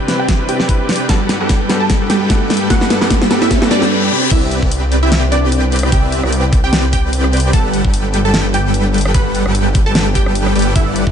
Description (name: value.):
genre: future bass.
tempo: 149 BPM.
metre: 4/4.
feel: swing 55% on 16ths, half-time.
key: unclear.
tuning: A4 = 440 Hz.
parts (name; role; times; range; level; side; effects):
shimmering ambient pad; sustained chords; 0.0-3.9 s; G2 to B4; -31 LUFS; right 1 dB; none.
dense compressed supersaw; riff; 0.0-11.1 s; G3 to G5; -17 LUFS; equal; sidechain pumping, low-pass filter.
riser and reverse cymbal; sound effects; 1.0-4.3 s; none; -23 LUFS; left 1 dB; none.
clear baby grand piano; accompaniment; 0.1-3.9 s; G3 to B4; -23 LUFS; left 1 dB; sidechain pumping, ping-pong delay.
big-room dance drum kit; drums; 0.1-11.0 s; crash cymbal, hi-hat, rim click, snare drum; -18 LUFS; equal; studio reverb.
wide unison pluck; melody; 0.2-10.9 s; D4 to B5; -22 LUFS; right 2 dB; phaser, cassette tape, sidechain pumping, tape echo.
electronic kick drum; drums; 0.3-11.1 s; none; -15 LUFS; equal; studio reverb.
wide detuned saw bass; bass; 4.3-11.1 s; G1 to C2; -16 LUFS; equal; chorus, tube saturation, sidechain pumping.
room: light reverb.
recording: nothing above 10.5 kHz.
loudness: -11 LUFS.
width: side -8 dB against mid.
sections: 0.0-4.3 A section; 4.3-11.1 B section.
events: build-up 0.0-4.3; drum fill 0.0-3.9; filter sweep on synth pluck 0.0-4.3; reverse cymbal 3.5-4.3; drop 4.3-11.1.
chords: 0.0 Cmaj9; 1.1 Gmaj9; 4.1 Csus2; 4.3 Cmaj9; 7.5 Gmaj9; 10.6 Em11/G.